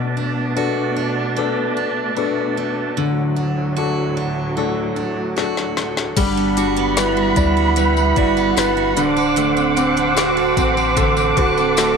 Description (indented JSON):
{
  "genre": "pop ballad",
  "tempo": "75 BPM",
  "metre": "4/4",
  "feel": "straight",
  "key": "G major",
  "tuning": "A4 = 440 Hz",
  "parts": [
    { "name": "clear concert grand piano", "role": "accompaniment", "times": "0.0-12.0 s", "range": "B2 to D5", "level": "-22 LUFS", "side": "left 11 dB", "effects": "none" },
    { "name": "muted chamber string section", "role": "sustained chords", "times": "0.0-12.0 s", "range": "D2 to D6", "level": "-20 LUFS", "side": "right 2 dB", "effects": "none" },
    { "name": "picked steel-string acoustic guitar", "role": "arpeggios", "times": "0.0-12.0 s", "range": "B2 to A4", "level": "-24 LUFS", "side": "right 8 dB", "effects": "none" },
    { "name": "smooth R&B drum kit", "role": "drums", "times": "5.4-12.0 s", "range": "crash cymbal, hi-hat, kick drum, snare drum", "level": "-22 LUFS", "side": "left 3 dB", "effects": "none" },
    { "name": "mellow French horn section", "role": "second line", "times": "6.2-12.0 s", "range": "D4 to A4", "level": "-21 LUFS", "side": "right 10 dB", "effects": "none" },
    { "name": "warm sub bass", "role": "bass", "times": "6.2-12.0 s", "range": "D1 to D2", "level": "-25 LUFS", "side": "equal", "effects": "none" },
    { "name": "tambourine", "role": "percussion", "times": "6.2-12.0 s", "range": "none", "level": "-33 LUFS", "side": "left 14 dB", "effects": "none" }
  ],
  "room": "light reverb, small room reverb",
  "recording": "1960s-style stereo with parts hard left and right",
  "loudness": "-16 LUFS",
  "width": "side -6 dB against mid",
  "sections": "0.0-6.2 A section; 6.2-12.0 B section",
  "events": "drum fill 5.4-6.2",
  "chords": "0.0 Bm7; 3.0 D; 6.2 Gmaj7; 9.0 D7",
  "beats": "0.57 1.37 2.17 | 2.97 3.77 4.57 5.37 | 6.17 6.97 7.77 8.57 | 9.37 10.17 10.97 11.77"
}